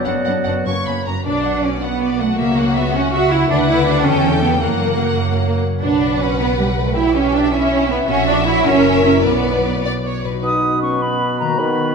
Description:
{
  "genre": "classical, dramatic, fast romantic movement for symphony orchestra",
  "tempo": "104 BPM (dotted quarters)",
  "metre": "6/8",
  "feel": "rubato",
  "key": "B minor",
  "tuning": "A4 = 440 Hz",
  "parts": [
    { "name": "clear clarinet", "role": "second line", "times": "0.0-1.1, 10.4-11.9 s", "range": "A#3 to F#4", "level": "-29 LUFS", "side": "left 2 dB", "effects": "none" },
    { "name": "concert flute", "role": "second line", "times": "0.0-1.1, 10.4-11.9 s", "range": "C#5 to D#6", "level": "-21 LUFS", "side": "left 1 dB", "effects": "none" },
    { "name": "warm bassoon", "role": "accompaniment", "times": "0.0-1.1, 10.4-11.9 s", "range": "B2 to F#3", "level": "-24 LUFS", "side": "right 2 dB", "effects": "none" },
    { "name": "warm symphonic viola section", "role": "accompaniment", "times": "0.0-9.8 s", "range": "G3 to F#4", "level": "-23 LUFS", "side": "right 4 dB", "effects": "none" },
    { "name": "concert harp", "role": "arpeggios", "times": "0.0-11.9 s", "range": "F#2 to G5", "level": "-23 LUFS", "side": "left 6 dB", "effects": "none" },
    { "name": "warm symphonic violin section", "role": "melody", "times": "0.1-10.2 s", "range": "D5 to C#6", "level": "-25 LUFS", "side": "left 3 dB", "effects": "none" },
    { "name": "warm oboe", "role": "second line", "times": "0.1-0.7, 10.4-11.9 s", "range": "F#4 to B4", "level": "-29 LUFS", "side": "right 4 dB", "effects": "none" },
    { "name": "warm symphonic violin section", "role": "second line", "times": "0.1-10.4 s", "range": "C#4 to D5", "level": "-23 LUFS", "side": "left 4 dB", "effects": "none" },
    { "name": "mellow French horn section", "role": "sustained chords", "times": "0.1-0.7, 10.4-11.9 s", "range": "F#3 to D#4", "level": "-26 LUFS", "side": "left 1 dB", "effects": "none" },
    { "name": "warm studio double bass section", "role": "bass", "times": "0.1-10.2 s", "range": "F#1 to F#2", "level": "-23 LUFS", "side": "right 5 dB", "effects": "none" },
    { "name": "warm symphonic cello section", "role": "bass", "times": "0.1-9.8 s", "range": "F#2 to F#4", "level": "-19 LUFS", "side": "right 3 dB", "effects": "none" }
  ],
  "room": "wet concert hall reverb, RT60 2.2 s",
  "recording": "minimal, uncompressed stereo recording",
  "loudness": "-14 LUFS",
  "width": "side -5 dB against mid",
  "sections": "0.0-1.3 A section; 1.3-10.4 B section; 10.4-11.9 C section",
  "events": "none",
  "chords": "0.1 Bm/F#; 0.7 F#; 1.3 Bm; 2.4 F#7/C#; 3.5 Bm/D; 4.1 C#dim/E; 4.7 F#; 5.8 Bm; 7.0 C#m7b5/B; 8.1 F#7/A#; 8.7 F#7b9; 9.2 Bm; 10.4 B"
}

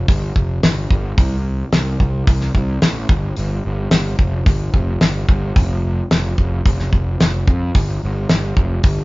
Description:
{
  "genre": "classic rock",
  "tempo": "110 BPM",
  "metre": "4/4",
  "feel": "straight",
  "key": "unclear",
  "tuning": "A4 = 444 Hz",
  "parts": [
    { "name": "fuzz picked electric bass", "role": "bass", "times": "0.0-9.0 s", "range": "F1 to F2", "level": "-19 LUFS", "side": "equal", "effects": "overdrive" },
    { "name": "damped 70s drum kit", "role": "drums", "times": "0.1-9.0 s", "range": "hi-hat, kick drum, snare drum", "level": "-15 LUFS", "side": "equal", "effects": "none" }
  ],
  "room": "moderate large studio reverb, RT60 1.4 s",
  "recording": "band playing live in one room, nothing above 7.5 kHz",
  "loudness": "-15 LUFS",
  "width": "side -22 dB against mid",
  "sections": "0.0-9.0 A section",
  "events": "none",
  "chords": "none"
}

